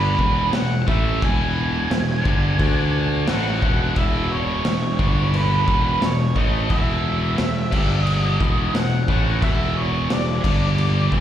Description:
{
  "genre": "quiet-loud alternative rock",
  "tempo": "88 BPM",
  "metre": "4/4",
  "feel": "straight",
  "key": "unclear",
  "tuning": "A4 = 440 Hz",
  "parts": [
    { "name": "octave-fuzz lead guitar", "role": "melody", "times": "0.0-11.1 s", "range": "B4 to G#5", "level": "-26 LUFS", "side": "right 2 dB", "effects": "distortion, slapback echo, analog delay" },
    { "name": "heavy high-gain guitar", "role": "riff", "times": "0.0-11.2 s", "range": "E2 to D4", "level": "-27 LUFS", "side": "left 12 dB", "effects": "distortion, slapback echo" },
    { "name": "heavy high-gain guitar", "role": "riff", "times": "0.0-11.2 s", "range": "E2 to D4", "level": "-27 LUFS", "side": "right 7 dB", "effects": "distortion, slapback echo" },
    { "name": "picked electric bass", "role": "bass", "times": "0.0-11.2 s", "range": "E1 to D2", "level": "-22 LUFS", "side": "equal", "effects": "none" },
    { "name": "raw garage drum kit", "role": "drums", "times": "0.2-11.2 s", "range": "crash cymbal, kick drum, snare drum", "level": "-23 LUFS", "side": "equal", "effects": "none" }
  ],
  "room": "little or no reverb",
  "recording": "live gig heard through the venue's PA, club reverb",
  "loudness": "-18 LUFS",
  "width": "side -11 dB against mid",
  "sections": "0.0-11.2 A section",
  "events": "none",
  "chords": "0.2 E; 2.6 D5; 3.3 E5; 5.0 G5; 5.7 E5; 7.7 G5; 8.4 E5; 10.4 G5",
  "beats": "0.54 | 1.23 1.91 2.60 3.28 | 3.97 4.65 5.34 6.02 | 6.70 7.38 8.07 8.75 | 9.43 10.11 10.79"
}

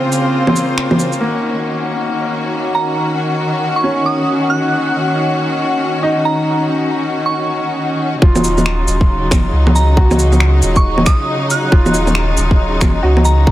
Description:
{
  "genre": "future garage",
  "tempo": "137 BPM",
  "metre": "4/4",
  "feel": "swing 61% on 16ths",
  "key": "Eb dorian",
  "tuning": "A4 = 440 Hz",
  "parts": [
    { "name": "bright upright piano", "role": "accompaniment", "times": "0.0-13.5 s", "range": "Bb3 to Gb4", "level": "-20 LUFS", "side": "equal", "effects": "sidechain pumping, low-pass filter, tape echo" },
    { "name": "clear symphonic string section", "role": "sustained chords", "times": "0.0-13.5 s", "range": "Db3 to C5", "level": "-18 LUFS", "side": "left 1 dB", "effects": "sidechain pumping" },
    { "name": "electronic shaker, bongos, finger snaps and cabasa", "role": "drums", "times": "0.1-1.2, 8.4-13.4 s", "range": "none", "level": "-17 LUFS", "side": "equal", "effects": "soft clipping on snare" },
    { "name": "soft synth bell", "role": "melody", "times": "2.7-13.5 s", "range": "Bb5 to Gb6", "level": "-21 LUFS", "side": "right 3 dB", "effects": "chorus, analog delay" },
    { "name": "warm sub bass", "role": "bass", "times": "8.2-13.5 s", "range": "Eb1 to Db2", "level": "-14 LUFS", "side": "equal", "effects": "sidechain pumping" },
    { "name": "electronic kick drum", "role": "drums", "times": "8.2-13.5 s", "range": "none", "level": "-11 LUFS", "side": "equal", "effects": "none" }
  ],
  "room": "light reverb",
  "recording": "dense, heavily limited modern master",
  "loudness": "-12 LUFS",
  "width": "side -14 dB against mid",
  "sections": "0.0-1.2 A section; 1.2-8.2 B section; 8.2-13.5 C section",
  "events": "break 0.0-1.2; band accent 0.8; filter sweep on upright piano 1.2-8.2",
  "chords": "0.0 Dbmaj7; 1.2 Ebm7",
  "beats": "0.34 0.77 | 1.21 1.65 2.09 2.53 | 2.96 3.40 3.84 4.28 | 4.71 5.15 5.59 6.03 | 6.47 6.91 7.34 7.78 | 8.22 8.66 9.10 9.53 | 9.97 10.41 10.85 11.29 | 11.72 12.16 12.60 13.04 | 13.47"
}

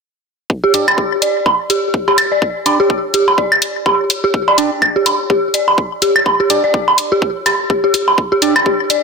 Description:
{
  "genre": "minimal techno",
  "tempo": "125 BPM",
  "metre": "4/4",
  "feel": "swing 58% on 16ths",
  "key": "unclear",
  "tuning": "A4 = 445 Hz",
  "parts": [
    { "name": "electronic kick drum", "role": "drums", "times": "0.5-8.8 s", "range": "none", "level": "-19 LUFS", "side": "equal", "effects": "high-pass filter on kick" },
    { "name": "dark detuned synth bell", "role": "riff", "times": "0.6-9.0 s", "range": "G4 to D5", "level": "-16 LUFS", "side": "equal", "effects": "chorus, sidechain pumping, low-pass filter, tape echo" },
    { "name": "percussive organ stab", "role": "stabs", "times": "0.7-8.5 s", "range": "D4 to D5", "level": "-20 LUFS", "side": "right 2 dB", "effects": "chorus, phaser, ping-pong delay" },
    { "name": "electronic hi-hat", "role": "drums", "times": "0.7-9.0 s", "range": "none", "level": "-18 LUFS", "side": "left 2 dB", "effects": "none" },
    { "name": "woodblock", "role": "percussion", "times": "0.9-8.6 s", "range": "none", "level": "-15 LUFS", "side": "right 1 dB", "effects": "overdrive, ping-pong delay" }
  ],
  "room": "moderate plate reverb, RT60 1.8 s, digital ambience",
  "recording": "dense, heavily limited modern master",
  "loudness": "-12 LUFS",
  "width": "side -4 dB against mid",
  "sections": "0.5-9.0 A section",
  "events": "filter sweep on synth stab 0.5-9.0",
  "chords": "0.5 G5",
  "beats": "| 0.50 0.98 1.46 1.94 | 2.42 2.90 3.38 3.86 | 4.34 4.82 5.30 5.78 | 6.26 6.74 7.22 7.70 | 8.18 8.66"
}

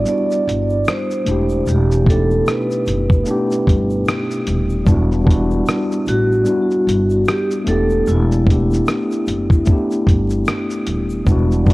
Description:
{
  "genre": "lo-fi hip hop",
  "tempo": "75 BPM",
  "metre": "4/4",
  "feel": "swing 60% on 16ths",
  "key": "unclear",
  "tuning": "A4 = 440 Hz",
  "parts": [
    { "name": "vibraphone with soft mallets", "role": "melody", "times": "0.0-10.4 s", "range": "E4 to D5", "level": "-21 LUFS", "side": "right 1 dB", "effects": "low-pass filter, tape echo" },
    { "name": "mellow tine electric piano", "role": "accompaniment", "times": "0.0-11.7 s", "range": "B2 to G4", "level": "-19 LUFS", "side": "equal", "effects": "medium stereo tremolo, cassette tape, low-pass filter" },
    { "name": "upright bass", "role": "bass", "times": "0.0-11.7 s", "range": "D#1 to A1", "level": "-19 LUFS", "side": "equal", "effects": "none" },
    { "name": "dusty soul sampler-style drum kit", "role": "drums", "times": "0.1-11.7 s", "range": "hi-hat, kick drum, rim click, shaker", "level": "-17 LUFS", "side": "equal", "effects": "none" },
    { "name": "egg shaker", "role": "percussion", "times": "0.1-11.7 s", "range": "none", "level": "-49 LUFS", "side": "left 4 dB", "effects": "none" }
  ],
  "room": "studio reverb",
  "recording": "worn, warbling old tape, cassette tape, vinyl crackle, warbly pitch drift",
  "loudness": "-14 LUFS",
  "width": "side -20 dB against mid",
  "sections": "0.0-11.3 A section",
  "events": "none",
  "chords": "0.0 Em9; 1.3 A9sus4; 4.9 Em9; 7.7 G69",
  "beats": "0.07 0.87 | 1.67 2.47 3.27 4.07 | 4.87 5.67 6.47 7.27 | 8.07 8.87 9.67 10.47 | 11.27"
}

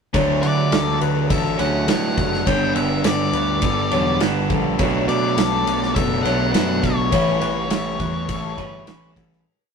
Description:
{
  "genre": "rock, shoegaze and dream pop",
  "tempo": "103 BPM",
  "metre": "4/4",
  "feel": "straight",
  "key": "D major",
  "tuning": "A4 = 440 Hz",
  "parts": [
    { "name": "fingerpicked twelve-string acoustic guitar", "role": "arpeggios", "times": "0.1-9.4 s", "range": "A4 to C#5", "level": "-26 LUFS", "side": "left 7 dB", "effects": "analog delay" },
    { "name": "electric guitar at the edge of break-up", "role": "riff", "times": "0.1-9.4 s", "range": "G2 to B4", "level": "-24 LUFS", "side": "right 6 dB", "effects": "none" },
    { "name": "overdriven electric guitar", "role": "riff", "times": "0.1-9.4 s", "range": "G2 to E4", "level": "-26 LUFS", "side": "left 5 dB", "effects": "none" },
    { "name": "growling picked electric bass", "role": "bass", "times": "0.1-9.4 s", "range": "E1 to D3", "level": "-25 LUFS", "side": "equal", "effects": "overdrive" },
    { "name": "loose indie drum kit", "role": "drums", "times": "0.1-9.4 s", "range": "kick drum, ride cymbal, snare drum", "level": "-24 LUFS", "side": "right 1 dB", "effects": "none" },
    { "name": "octave-fuzz lead guitar", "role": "melody", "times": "0.4-9.1 s", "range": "C#5 to G5", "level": "-26 LUFS", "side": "left 2 dB", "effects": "distortion" }
  ],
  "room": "wet studio reverb, RT60 0.6 s",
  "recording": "rough rehearsal-room recording, tube saturation",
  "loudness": "-17 LUFS",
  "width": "side -6 dB against mid",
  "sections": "0.1-9.4 verse",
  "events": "fade-out 7.1-9.4",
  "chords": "0.1 Dmaj7; 2.5 G; 4.8 Bm7; 7.1 A9",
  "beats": "| 0.14 0.72 1.30 1.88 | 2.46 3.05 3.63 4.21 | 4.80 5.38 5.96 6.54 | 7.12 7.71 8.29 8.87"
}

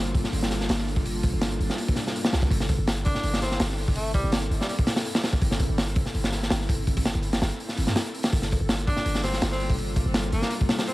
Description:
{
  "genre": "drum and bass, jungle",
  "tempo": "165 BPM",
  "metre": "4/4",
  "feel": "straight",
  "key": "G dorian",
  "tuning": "A4 = 440 Hz",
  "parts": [
    { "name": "airy breathy pad", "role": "sustained chords", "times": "0.0-10.9 s", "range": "G3 to A4", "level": "-34 LUFS", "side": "left 1 dB", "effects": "chorus" },
    { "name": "warm 808-style bass", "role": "bass", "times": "0.0-10.4 s", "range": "G1 to G2", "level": "-28 LUFS", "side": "equal", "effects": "tube saturation" },
    { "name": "crunchy breakbeat drum kit", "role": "drums", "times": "0.1-10.9 s", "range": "hi-hat, kick drum, snare drum", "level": "-25 LUFS", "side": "equal", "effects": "none" },
    { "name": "clear tenor saxophone", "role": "melody", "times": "3.1-4.8, 8.9-10.9 s", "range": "G3 to D4", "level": "-33 LUFS", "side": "equal", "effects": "dub echo" }
  ],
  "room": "studio reverb",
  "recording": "vinyl crackle",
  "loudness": "-23 LUFS",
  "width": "side -19 dB against mid",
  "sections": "0.0-10.9 A section",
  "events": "kick drops out 7.6-8.3",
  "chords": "0.0 Gm9; 2.5 Am/G; 8.3 Gm9",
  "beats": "0.33 0.69 | 1.05 1.42 1.78 2.14 | 2.51 2.87 3.23 3.60 | 3.96 4.33 4.69 5.05 | 5.42 5.78 6.14 6.51 | 6.87 7.24 7.60 7.96 | 8.33 8.69 9.05 9.42 | 9.78 10.14 10.51 10.87"
}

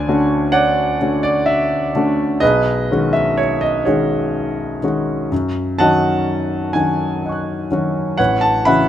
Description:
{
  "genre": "classical, impressionist solo piano",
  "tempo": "62 BPM",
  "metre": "3/4",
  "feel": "rubato",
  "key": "unclear",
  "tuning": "A4 = 440 Hz",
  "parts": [
    { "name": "clear grand piano", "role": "solo", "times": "0.0-8.9 s", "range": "A1 to F#6", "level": "-15 LUFS", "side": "equal", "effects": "none" }
  ],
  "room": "light reverb",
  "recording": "close, detailed microphones",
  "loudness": "-15 LUFS",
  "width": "side -11 dB against mid",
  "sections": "0.0-8.9 A section",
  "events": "none",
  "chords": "0.0 Dmaj7#11; 2.4 B69; 5.3 F#m6; 8.2 A69",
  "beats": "0.54 1.47 | 2.41 3.38 4.34 | 5.31 6.27 7.22 | 8.19"
}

